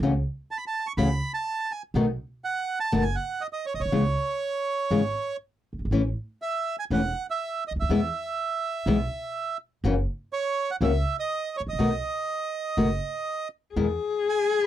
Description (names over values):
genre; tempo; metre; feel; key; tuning
tango; 122 BPM; 4/4; rubato; E major; A4 = 441 Hz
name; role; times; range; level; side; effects
nylon-string guitar; accompaniment; 0.0-13.9 s; B2 to F#4; -23 LUFS; left 3 dB; none
upright bass; bass; 0.0-14.0 s; E1 to E2; -28 LUFS; right 1 dB; none
bandoneon; melody; 0.5-14.6 s; C#5 to C#6; -28 LUFS; right 4 dB; none
warm cello; second line; 13.7-14.7 s; G#4; -24 LUFS; left 6 dB; none
room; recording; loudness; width
light reverb; dry, close 1970s-style studio recording; -25 LUFS; side -12 dB against mid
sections
0.0-14.7 A section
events
none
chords
0.0 F#m/C# (rootless); 2.0 B7; 3.9 C#m7; 5.9 A; 7.9 E; 9.8 F#7; 11.8 B7; 13.8 E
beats
| 0.02 0.51 1.00 1.48 | 1.96 2.45 2.94 3.44 | 3.93 4.42 4.92 5.41 | 5.91 6.41 6.91 7.40 | 7.90 8.38 8.87 9.36 | 9.84 10.33 10.82 11.31 | 11.79 12.28 12.77 13.27 | 13.76 14.26